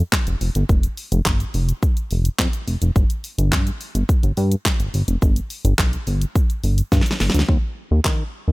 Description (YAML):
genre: dance-pop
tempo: 106 BPM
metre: 4/4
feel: straight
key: unclear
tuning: A4 = 438 Hz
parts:
  - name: chorused synth bass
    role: bass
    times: 0.0-8.5 s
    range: F1 to Eb3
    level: -18 LUFS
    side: equal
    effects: sidechain pumping
  - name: pop drum kit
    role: drums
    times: 0.1-8.2 s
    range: handclaps, hi-hat, kick drum, shaker, snare drum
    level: -19 LUFS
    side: equal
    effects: none
room: little or no reverb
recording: none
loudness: -18 LUFS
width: side -22 dB against mid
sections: 0.0-7.5 A section; 7.5-8.5 B section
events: drum fill 6.9-7.5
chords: none